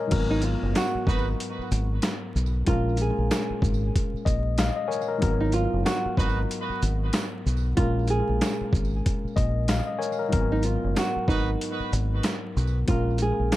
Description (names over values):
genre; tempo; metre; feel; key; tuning
hip hop, boom-bap hip-hop; 94 BPM; 4/4; swing 60% on 16ths; G# dorian; A4 = 440 Hz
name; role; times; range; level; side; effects
tine electric piano; accompaniment; 0.0-13.6 s; G#2 to G#5; -30 LUFS; left 4 dB; high-pass filter, low-pass filter, tape echo
deep dub fingered electric bass; bass; 0.1-13.5 s; F#1 to B1; -26 LUFS; equal; none
dusty soul sampler-style drum kit; drums; 0.1-13.6 s; crash cymbal, hi-hat, kick drum, shaker, snare drum; -27 LUFS; equal; overdrive
flamenco guitar; melody; 0.3-13.6 s; D#4 to G#4; -30 LUFS; right 3 dB; high-pass filter, low-pass filter, tape echo
tambourine; percussion; 0.8-13.6 s; none; -46 LUFS; right 15 dB; tape echo
warm trumpet section; stabs; 1.1-1.3, 6.2-6.4, 11.3-11.5 s; D#4 to B4; -34 LUFS; right 4 dB; high-pass filter, low-pass filter, tape echo
room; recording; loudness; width
light reverb; echo-heavy mix, vinyl crackle; -23 LUFS; side -15 dB against mid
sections
0.1-13.6 A section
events
none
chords
0.1 G#m9; 2.7 A#m7; 5.2 G#m9; 7.8 A#m7; 10.3 G#m9; 12.9 A#m7